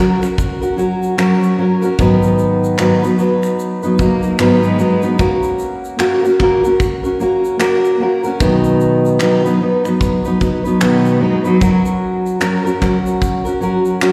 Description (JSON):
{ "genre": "acoustic pop", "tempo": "75 BPM", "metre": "4/4", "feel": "swing 60% on 16ths", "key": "F# major", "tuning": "A4 = 439 Hz", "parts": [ { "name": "fingerpicked steel-string acoustic guitar", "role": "accompaniment", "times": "0.0-14.1 s", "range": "G#2 to B4", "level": "-15 LUFS", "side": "equal", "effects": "slapback echo" }, { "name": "modern studio drum kit", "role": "drums", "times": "0.2-14.1 s", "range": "finger snaps, kick drum, shaker", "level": "-24 LUFS", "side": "equal", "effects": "none" }, { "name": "group handclap", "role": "percussion", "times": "1.2-14.1 s", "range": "none", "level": "-31 LUFS", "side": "equal", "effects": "slapback echo" }, { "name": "rich cello", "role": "second line", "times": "4.0-5.2, 10.8-11.8 s", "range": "F#3 to B3", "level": "-21 LUFS", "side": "equal", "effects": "none" } ], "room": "light reverb, studio reverb", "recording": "live gig heard through the venue's PA, recital hall reverb", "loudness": "-15 LUFS", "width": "mono", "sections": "0.0-14.1 A section", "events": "none", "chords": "0.0 F#; 2.0 G#m7; 5.2 F#/A#; 8.4 B; 11.6 F#" }